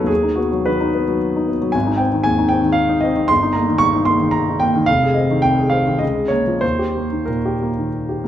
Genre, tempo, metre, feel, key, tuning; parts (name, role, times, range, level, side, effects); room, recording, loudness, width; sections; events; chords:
classical, romantic character piece for solo piano; 92-118 BPM; 3/4; rubato; A4 = 440 Hz
warm grand piano; solo; 0.0-8.3 s; F1 to Db6; -15 LUFS; equal
moderate recital hall reverb, RT60 1.6 s; -15 LUFS; side -11 dB against mid
0.0-8.3 A section
0.1 B/D#; 1.7 Ab; 3.3 Eb/G; 4.9 Fm7; 6.0 Bbm7/Db; 6.6 Eb